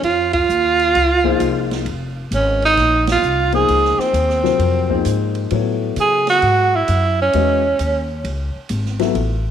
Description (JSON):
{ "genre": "modal jazz", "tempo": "132 BPM", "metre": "4/4", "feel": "swing 66% on 8ths", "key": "Db major", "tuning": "A4 = 440 Hz", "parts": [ { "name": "breathy tenor saxophone", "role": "melody", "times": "0.0-8.1 s", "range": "C4 to G#4", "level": "-16 LUFS", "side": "right 3 dB", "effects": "tape echo" }, { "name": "upright bass", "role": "bass", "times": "0.0-9.5 s", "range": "F1 to C#3", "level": "-21 LUFS", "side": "equal", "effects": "none" }, { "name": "open jazz drum kit", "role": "drums", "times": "0.0-9.3 s", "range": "hi-hat, kick drum, ride cymbal, snare drum", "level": "-31 LUFS", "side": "right 5 dB", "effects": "none" }, { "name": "warm grand piano", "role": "accompaniment", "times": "1.2-9.1 s", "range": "C3 to E5", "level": "-21 LUFS", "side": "left 12 dB", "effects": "none" } ], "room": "moderate echo chamber reverb, RT60 1.3 s, small room ambience", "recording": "1960s-style stereo", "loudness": "-14 LUFS", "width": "side -9 dB against mid", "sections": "0.0-9.5 A section", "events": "band accent 0.3, 3.0", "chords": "0.0 Dbmaj9; 5.5 Amaj9" }